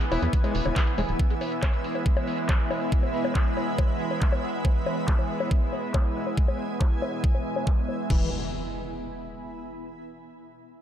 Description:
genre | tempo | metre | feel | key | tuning
psychedelic trance | 139 BPM | 4/4 | straight | E major | A4 = 440 Hz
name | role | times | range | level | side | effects
evolving wavetable pad | sustained chords | 0.0-8.1 s | E3 to B3 | -32 LUFS | right 2 dB | chorus, built-in reverb, sidechain pumping
techno drum kit | drums | 0.0-8.2 s | bongos, crash cymbal, handclaps, hi-hat | -33 LUFS | left 4 dB | low-pass filter on hats, low-pass filter on perc, low-pass filter on snare, low-pass filter on cymbals, low-pass filter on room
granular cloud pad | texture | 0.0-9.8 s | B3 to B5 | -33 LUFS | equal | built-in reverb, sidechain pumping
overdriven acid bass | riff | 0.1-1.0, 8.1-8.3 s | D3 to E4 | -34 LUFS | left 2 dB | auto-pan, sidechain pumping, tape echo
tight sequencer bass | bass | 0.1-1.1, 8.1-8.3 s | D1 to E2 | -28 LUFS | equal | none
electronic kick drum | drums | 0.3-8.2 s | none | -23 LUFS | equal | overdrive
impact | sound effects | 8.2-9.8 s | none | -36 LUFS | equal | none
room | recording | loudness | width
light reverb, digital ambience | none | -23 LUFS | side -10 dB against mid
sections
0.0-8.1 A section; 8.1-9.8 B section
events
filter sweep on drum 0.0-8.1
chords
0.0 E5

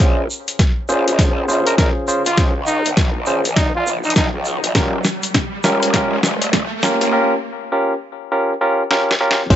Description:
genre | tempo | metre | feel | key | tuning
glitch hop | 101 BPM | 4/4 | swing 62% on 16ths | Bb dorian | A4 = 440 Hz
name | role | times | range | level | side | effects
barky tine electric piano | stabs | 0.0-9.6 s | Db4 to C5 | -18 LUFS | equal | sidechain pumping, low-pass filter, ping-pong delay
growl bass | bass | 0.0-9.6 s | Eb1 to Db2 | -22 LUFS | equal | chorus, overdrive, high-pass filter
boom bap sampler-style drum kit | drums | 0.0-9.6 s | crash cymbal, hi-hat, snare drum | -19 LUFS | left 1 dB | small room reverb
electronic kick drum | drums | 0.0-9.6 s | none | -17 LUFS | equal | small room reverb
egg shaker | percussion | 0.0-7.1 s | none | -28 LUFS | right 3 dB | none
riser and sub drop | sound effects | 0.0-9.6 s | none | -27 LUFS | right 2 dB | none
warm trumpet | melody | 1.7-4.3 s | Eb4 to Bb4 | -22 LUFS | equal | ping-pong delay
room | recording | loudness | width
moderate studio reverb, RT60 0.5 s | high-pass filter, nothing above 7.9 kHz | -15 LUFS | side -10 dB against mid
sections
0.0-9.5 A section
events
build-up 0.0-9.5; drum fill 0.0-7.1, 8.9-9.5; riser 0.0-7.1; filter sweep on tine electric piano 0.0-9.5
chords
0.0 Bbm7; 4.8 Eb7

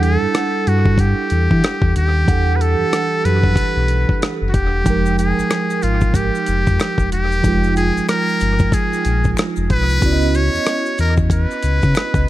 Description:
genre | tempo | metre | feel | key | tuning
R&B, neo-soul | 93 BPM | 4/4 | swing 60% on 16ths | unclear | A4 = 440 Hz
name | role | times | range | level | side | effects
trumpet with metal mute | melody | 0.0-12.3 s | F4 to C#5 | -21 LUFS | left 1 dB | dub echo
mellow tine electric piano | accompaniment | 0.0-12.3 s | E3 to G5 | -21 LUFS | right 5 dB | phaser, dub echo
sub bass with octave | bass | 0.0-12.3 s | E1 to E3 | -17 LUFS | left 1 dB | none
dusty soul sampler-style drum kit | drums | 0.0-12.3 s | hi-hat, kick drum, rim click | -19 LUFS | left 1 dB | none
maracas and finger snaps | percussion | 4.9-12.3 s | none | -35 LUFS | left 9 dB | none
room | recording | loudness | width
studio reverb | echo-heavy mix | -14 LUFS | side -15 dB against mid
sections
0.0-12.3 A section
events
none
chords
0.0 Em11; 4.9 Fm11; 10.0 C#m11

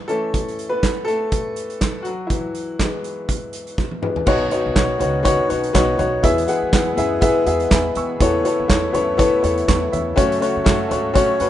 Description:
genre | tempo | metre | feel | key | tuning
piano-driven pop | 122 BPM | 4/4 | swing 56% on 16ths | E major | A4 = 441 Hz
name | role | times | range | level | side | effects
bright upright piano | accompaniment | 0.0-11.5 s | B2 to E6 | -19 LUFS | left 2 dB | none
loose indie drum kit | drums | 0.1-11.5 s | crash cymbal, handclaps, hi-hat, kick drum, snare drum, toms | -21 LUFS | right 1 dB | none
lush unison pad | sustained chords | 4.3-11.5 s | C#3 to A4 | -30 LUFS | right 2 dB | chorus
upright bass | bass | 4.3-11.5 s | B1 to G#2 | -26 LUFS | right 1 dB | none
room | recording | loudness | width
small room reverb | rough home demo mix, nothing above 10.8 kHz | -17 LUFS | side -12 dB against mid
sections
0.0-4.3 A section; 4.3-11.5 B section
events
upright piano solo 0.0-4.3; drum fill 3.8-4.3; upright piano fill 7.5-8.2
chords
0.1 Aadd9/E; 2.1 E; 4.3 Badd9; 6.2 E; 8.2 Aadd9/E; 10.2 F#m

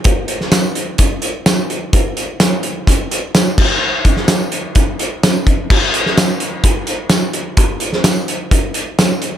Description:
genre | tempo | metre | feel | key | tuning
rock | 128 BPM | 4/4 | straight | none | none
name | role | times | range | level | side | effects
loose indie drum kit | drums | 0.0-9.3 s | crash cymbal, hi-hat, kick drum, snare drum, tambourine | -13 LUFS | equal | none
room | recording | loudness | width
light reverb | none | -13 LUFS | side -10 dB against mid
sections
0.0-9.4 A section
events
none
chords
none

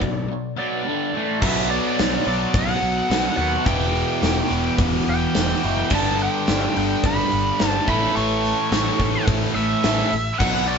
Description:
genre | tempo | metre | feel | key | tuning
hard rock | 107 BPM | 4/4 | straight | B minor | A4 = 439 Hz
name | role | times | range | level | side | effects
biting lead guitar | melody | 0.0-10.8 s | D5 to C#6 | -25 LUFS | equal | overdrive
cranked stack guitar | riff | 0.0-10.8 s | E2 to B3 | -26 LUFS | left 6 dB | overdrive
overdriven semi-hollow guitar | riff | 0.0-10.8 s | E2 to B3 | -26 LUFS | right 6 dB | phaser
modern bright picked electric bass | bass | 0.0-10.8 s | E1 to D#2 | -26 LUFS | equal | none
gated 80s drum kit | drums | 0.0-10.8 s | crash cymbal, hi-hat, kick drum, snare drum | -24 LUFS | equal | none
heavy high-gain guitar | riff | 1.4-10.8 s | A2 to G4 | -28 LUFS | equal | distortion
room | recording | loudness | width
moderate stone room reverb, RT60 1.0 s | band playing live in one room, nothing above 7.8 kHz | -18 LUFS | side -6 dB against mid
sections
0.0-1.4 A section; 1.4-10.8 B section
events
none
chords
0.0 Bm; 0.9 G5; 1.1 A5; 1.4 Bm; 3.7 Em; 5.9 G; 7.9 A

